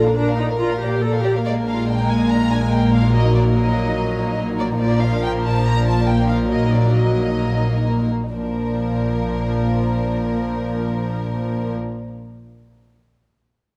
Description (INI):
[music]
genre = quick classical-period movement for symphony orchestra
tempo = 125-145 BPM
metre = 4/4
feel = straight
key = Bb major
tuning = A4 = 439 Hz
[part]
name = rich studio violin section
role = melody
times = 0.0-11.7 s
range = Bb4 to Bb5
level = -32 LUFS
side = equal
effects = none
[part]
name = warm studio violin section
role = second line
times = 0.0-11.7 s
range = Ab3 to D5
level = -30 LUFS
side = equal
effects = none
[part]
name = rich studio viola section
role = accompaniment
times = 0.0-11.7 s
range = F3 to A4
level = -25 LUFS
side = equal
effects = none
[part]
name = mellow French horn section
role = sustained chords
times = 0.0-1.2 s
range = A4 to Bb4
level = -25 LUFS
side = equal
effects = none
[part]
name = dark studio cello section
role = bass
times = 0.0-11.7 s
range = Bb2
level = -26 LUFS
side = equal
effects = none
[part]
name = dark studio double bass section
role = bass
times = 0.0-11.7 s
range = Bb1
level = -24 LUFS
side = equal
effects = none
[sound]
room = moderate scoring stage reverb, RT60 1.7 s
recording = none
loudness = -19 LUFS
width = mono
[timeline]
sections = 0.0-1.5 A section; 1.5-8.3 B section; 8.3-12.0 C section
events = slowing down 4.0-8.3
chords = 0.0 Bb; 1.5 Bb7; 3.1 Ebm/Bb; 4.8 Bb; 6.5 Ebm/Bb; 8.3 Bb